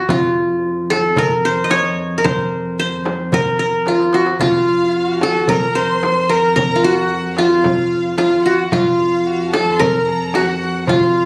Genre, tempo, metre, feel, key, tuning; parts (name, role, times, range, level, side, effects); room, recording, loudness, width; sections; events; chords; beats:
Arabic maqam ensemble; 111 BPM; 4/4; straight; F maqam hijaz; A4 = 437 Hz
qanun; melody; 0.0-11.3 s; F4 to Eb5; -18 LUFS; equal
rich double bass; drone; 0.0-11.3 s; F2; -28 LUFS; equal
darbuka; percussion; 0.1-11.2 s; -29 LUFS; equal
frame drum; percussion; 0.1-11.0 s; -25 LUFS; equal
clear studio violin section; second line; 4.4-11.3 s; F5 to C6; -29 LUFS; equal
dark violin; second line; 4.4-11.3 s; F4 to C5; -26 LUFS; equal
moderate studio reverb, RT60 0.6 s; recorded on a phone in the room, studio reverb; -16 LUFS; mono
0.0-11.3 A section
drum fill 3.9-4.4
| 0.09 0.63 1.17 1.71 | 2.25 2.79 3.33 3.87 | 4.41 4.95 5.49 6.03 | 6.57 7.11 7.65 8.19 | 8.73 9.27 9.81 10.35 | 10.88